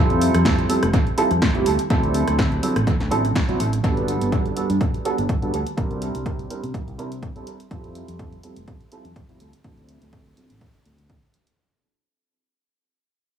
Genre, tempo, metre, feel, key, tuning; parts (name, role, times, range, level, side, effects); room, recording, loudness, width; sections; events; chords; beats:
filtered disco house; 124 BPM; 4/4; swing 54% on 16ths; A4 = 435 Hz
dark baby grand piano; accompaniment; 0.0-10.5 s; F#3 to Bb4; -23 LUFS; right 2 dB; phaser, sidechain pumping, low-pass filter, tape echo
fingered electric bass; bass; 0.0-11.2 s; F1 to C3; -24 LUFS; equal; sidechain pumping, low-pass filter
punchy analog drum machine; drums; 0.1-11.6 s; hi-hat, rim click, snare drum; -28 LUFS; equal; sidechain pumping on hats, sidechain pumping on perc, sidechain pumping on cymbals, tape echo
electronic kick drum; drums; 0.5-11.2 s; -22 LUFS; equal
light reverb; echo-heavy mix, small room ambience; -19 LUFS; side -8 dB against mid
0.0-11.6 A section
fade-out 0.0-11.6; filter sweep 0.0-11.6
0.0 Fmaj7; 1.7 D7; 3.8 Gmaj7; 5.8 C9; 7.5 Fmaj7; 9.4 D7
0.45 0.93 1.42 | 1.90 2.39 2.87 3.35 | 3.84 4.32 4.80 5.29 | 5.77 6.26 6.74 7.22 | 7.71 8.19 8.68 9.16 | 9.64 10.13 10.61 11.10